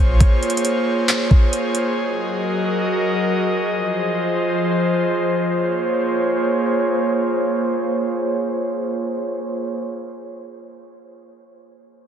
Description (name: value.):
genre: hip hop, atmospheric cloud-rap.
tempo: 136 BPM.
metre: 4/4.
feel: half-time.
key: Bb minor.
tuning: A4 = 440 Hz.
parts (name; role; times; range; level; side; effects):
airy breathy pad; sustained chords; 0.0-9.8 s; F3 to Eb5; -19 LUFS; equal; chorus, sidechain pumping, low-pass filter.
smooth R&B drum kit; drums; 0.2-1.9 s; handclaps, hi-hat, kick drum; -15 LUFS; equal; overdrive.
room: light reverb.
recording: dense, heavily limited modern master.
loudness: -18 LUFS.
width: side -8 dB against mid.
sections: 0.0-5.5 A section; 5.5-9.0 B section.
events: none.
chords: 0.0 Bbm9; 2.0 Gb69; 3.7 Fm7; 5.5 Bbm9.